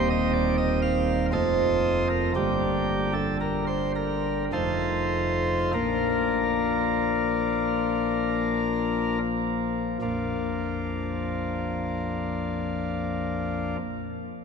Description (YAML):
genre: classical, chorale-style piece for pipe organ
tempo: 37-60 BPM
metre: 3/4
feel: straight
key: Bb major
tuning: A4 = 439 Hz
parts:
  - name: chamber organ, principal chorus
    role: solo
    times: 0.0-13.8 s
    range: Eb1 to F5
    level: -24 LUFS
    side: equal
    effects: none
room: wet cathedral reverb, RT60 5.2 s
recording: none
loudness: -24 LUFS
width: side -5 dB against mid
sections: 0.0-10.0 A section; 10.0-14.4 B section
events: slowing down 0.9-10.0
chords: 0.0 Cm7/Eb; 1.4 F7; 2.4 Gm; 4.5 F7; 5.8 Bb